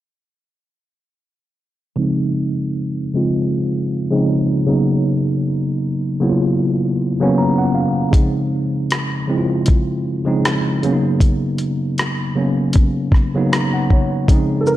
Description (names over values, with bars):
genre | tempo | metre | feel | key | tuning
lo-fi hip hop | 78 BPM | 4/4 | swing 56% on 16ths | unclear | A4 = 441 Hz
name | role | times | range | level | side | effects
mellow tine electric piano | accompaniment | 2.0-14.8 s | Db3 to Bb5 | -16 LUFS | equal | medium stereo tremolo, cassette tape, low-pass filter
dusty soul sampler-style drum kit | drums | 8.1-14.8 s | hi-hat, kick drum, rim click, shaker | -16 LUFS | equal | none
dark upright piano | melody | 14.6-14.8 s | A4 to Bb4 | -16 LUFS | equal | none
room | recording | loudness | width
light reverb | none | -15 LUFS | side -14 dB against mid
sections
2.0-14.3 A section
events
filter sweep on tine electric piano 2.0-14.3; tine electric piano fill 7.0-8.1, 13.1-14.3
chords
2.0 Dbmaj9; 4.7 Cbmaj9; 8.1 Dbmaj9; 10.8 Cbmaj9